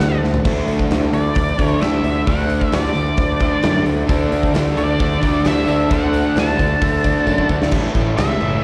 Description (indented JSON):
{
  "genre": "classic rock",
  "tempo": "132 BPM",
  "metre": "4/4",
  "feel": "straight",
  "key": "unclear",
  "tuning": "A4 = 440 Hz",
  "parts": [
    { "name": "octave-fuzz lead guitar", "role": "melody", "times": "0.0-8.6 s", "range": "D5 to A5", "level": "-26 LUFS", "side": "equal", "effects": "wah, distortion, slapback echo" },
    { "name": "overdriven semi-hollow guitar", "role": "riff", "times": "0.0-8.6 s", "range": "A2 to D4", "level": "-23 LUFS", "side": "equal", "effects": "none" },
    { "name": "fuzz picked electric bass", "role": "bass", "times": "0.0-8.6 s", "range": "F#1 to F#2", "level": "-23 LUFS", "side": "equal", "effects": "overdrive" },
    { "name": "big rock drum kit", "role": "drums", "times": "0.0-8.5 s", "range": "crash cymbal, hi-hat, kick drum, snare drum, toms", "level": "-23 LUFS", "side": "equal", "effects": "none" },
    { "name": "tambourine", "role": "percussion", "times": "0.3-0.4, 4.1-8.5 s", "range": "none", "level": "-47 LUFS", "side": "equal", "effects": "none" },
    { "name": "bright tonewheel organ", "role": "sustained chords", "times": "4.1-8.6 s", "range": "A3 to A4", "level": "-35 LUFS", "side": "equal", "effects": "none" },
    { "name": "overdriven electric guitar", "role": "riff", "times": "4.1-7.7 s", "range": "D3 to D4", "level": "-26 LUFS", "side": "equal", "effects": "slapback echo" }
  ],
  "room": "light reverb",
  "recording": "live gig heard through the venue's PA, recital hall reverb",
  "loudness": "-17 LUFS",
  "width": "mono",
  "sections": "0.5-7.7 A section",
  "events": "drum fill 0.2, 7.3-7.7",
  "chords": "0.5 D; 7.7 Aadd9"
}